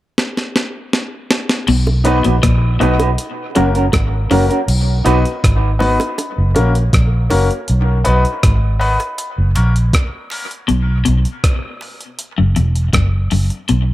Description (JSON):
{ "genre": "dub reggae", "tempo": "80 BPM", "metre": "4/4", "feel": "straight", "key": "B major", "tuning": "A4 = 444 Hz", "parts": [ { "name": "breakbeat sampler-style drum kit", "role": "drums", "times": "0.2-13.9 s", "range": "crash cymbal, hi-hat, kick drum, rim click, snare drum", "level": "-18 LUFS", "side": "equal", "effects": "none" }, { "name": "electric guitar at the edge of break-up", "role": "riff", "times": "1.7-4.4, 10.7-13.9 s", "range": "E2 to B2", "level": "-20 LUFS", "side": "left 5 dB", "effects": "dub echo" }, { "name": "vintage muted fingered electric bass", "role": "bass", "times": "1.7-13.9 s", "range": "E1 to B1", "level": "-14 LUFS", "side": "equal", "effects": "none" }, { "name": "bongos", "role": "percussion", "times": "1.9-12.0 s", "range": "none", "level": "-24 LUFS", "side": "right 3 dB", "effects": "high-pass filter on perc, dub echo" }, { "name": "electric guitar at the edge of break-up", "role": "accompaniment", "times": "2.0-5.2 s", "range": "C#4 to B4", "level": "-20 LUFS", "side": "right 2 dB", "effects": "warbly pitch drift, high-pass filter, dub echo" }, { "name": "clear concert grand piano", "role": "stabs", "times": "2.0-10.5 s", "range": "A#3 to B4", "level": "-20 LUFS", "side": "left 2 dB", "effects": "high-pass filter, dub echo" } ], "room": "light reverb, digital ambience", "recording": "none", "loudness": "-13 LUFS", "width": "side -15 dB against mid", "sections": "0.0-1.7 A section; 1.7-4.7 B section; 4.7-13.9 C section", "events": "drum fill 0.2-1.7; filter sweep 4.7-13.7; part muted 10.7-13.9", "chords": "0.0 N.C.; 1.7 B; 3.2 F#; 4.7 B; 6.2 F#; 7.7 B; 9.2 F#; 10.7 N.C.; 12.2 Esus2" }